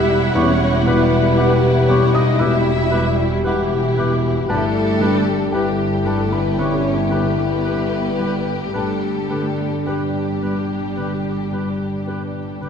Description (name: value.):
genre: cinematic, emotional film score for orchestra.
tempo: 53-59 BPM.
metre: 4/4.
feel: rubato.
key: unclear.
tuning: A4 = 440 Hz.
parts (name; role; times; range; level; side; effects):
warm symphonic violin section; melody; 0.0-12.7 s; E4 to G4; -26 LUFS; left 6 dB; none.
hollow small flute group; second line; 0.0-12.1 s; G4 to E5; -28 LUFS; left 3 dB; none.
rich studio violin section; second line; 0.0-12.1 s; G4 to E5; -31 LUFS; left 3 dB; none.
felt-muted upright piano; accompaniment; 0.0-12.7 s; E2 to F#6; -24 LUFS; left 3 dB; none.
rich symphonic viola section; accompaniment; 0.0-12.7 s; D3 to F#5; -26 LUFS; right 3 dB; none.
dark French horn section; sustained chords; 0.0-12.6 s; D4 to G4; -23 LUFS; left 4 dB; none.
rich studio double bass section; bass; 0.0-12.7 s; E1 to G1; -22 LUFS; right 2 dB; none.
warm symphonic cello section; bass; 0.0-12.1 s; G3 to E4; -27 LUFS; right 4 dB; none.
warm oboe; second line; 0.3-12.7 s; B4; -31 LUFS; right 2 dB; none.
warm clarinet; second line; 0.4-12.7 s; G4; -33 LUFS; left 3 dB; none.
room: moderate scoring stage reverb, RT60 1.8 s.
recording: dark, warm production.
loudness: -16 LUFS.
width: side -7 dB against mid.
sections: 0.0-12.7 A section.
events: none.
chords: 0.0 Emadd9; 4.5 G.